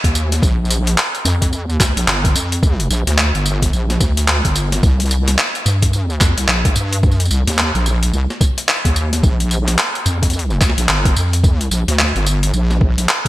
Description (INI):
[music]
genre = glitch hop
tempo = 109 BPM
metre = 4/4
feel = swing 61% on 16ths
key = unclear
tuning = A4 = 441 Hz
[part]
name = wobble bass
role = bass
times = 0.0-13.1 s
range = G1 to G2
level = -16 LUFS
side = equal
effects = chorus, tube saturation
[part]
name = boom bap sampler-style drum kit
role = drums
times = 0.0-13.3 s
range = handclaps, hi-hat, snare drum, tambourine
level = -18 LUFS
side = equal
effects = overdrive, gated reverb
[part]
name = electronic kick drum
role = drums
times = 0.0-13.3 s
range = none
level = -15 LUFS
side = equal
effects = overdrive
[sound]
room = little or no reverb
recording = bright 1980s-style digital production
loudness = -13 LUFS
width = side -16 dB against mid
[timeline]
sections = 0.0-13.3 A section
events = none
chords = none